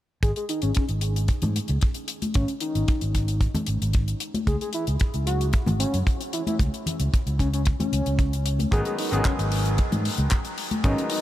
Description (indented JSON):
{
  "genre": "nu-disco, nu disco",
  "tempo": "113 BPM",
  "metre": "4/4",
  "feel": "straight",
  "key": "unclear",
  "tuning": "A4 = 440 Hz",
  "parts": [
    { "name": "soft octave-layered synth lead", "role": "melody", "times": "0.2-11.2 s", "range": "C#4 to G#4", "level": "-30 LUFS", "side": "left 1 dB", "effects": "chorus, cassette tape, ping-pong delay" },
    { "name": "fingered electric bass", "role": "bass", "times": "0.2-10.9 s", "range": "G#1 to G#2", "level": "-25 LUFS", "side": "equal", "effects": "none" },
    { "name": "damped 70s drum kit", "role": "drums", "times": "0.2-11.2 s", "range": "handclaps, hi-hat", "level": "-33 LUFS", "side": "left 5 dB", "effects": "none" },
    { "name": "kick drum", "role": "drums", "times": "0.2-11.0 s", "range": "none", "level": "-22 LUFS", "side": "equal", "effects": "none" },
    { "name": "congas", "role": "percussion", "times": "1.4-10.8 s", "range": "none", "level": "-31 LUFS", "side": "left 2 dB", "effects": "none" },
    { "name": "clear baby grand piano", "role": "accompaniment", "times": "8.7-11.2 s", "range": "D#3 to G#4", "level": "-29 LUFS", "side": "equal", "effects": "sidechain pumping, tape echo" }
  ],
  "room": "light reverb, small room reverb",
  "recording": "none",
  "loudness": "-22 LUFS",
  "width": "side -14 dB against mid",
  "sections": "0.2-11.2 A section",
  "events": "none",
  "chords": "0.2 G#sus4; 4.2 C#5; 8.7 G#m7",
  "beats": "| 0.23 0.76 1.29 1.82 | 2.35 2.88 3.41 3.94 | 4.47 5.00 5.53 6.07 | 6.60 7.13 7.66 8.19 | 8.72 9.25 9.78 10.31 | 10.84"
}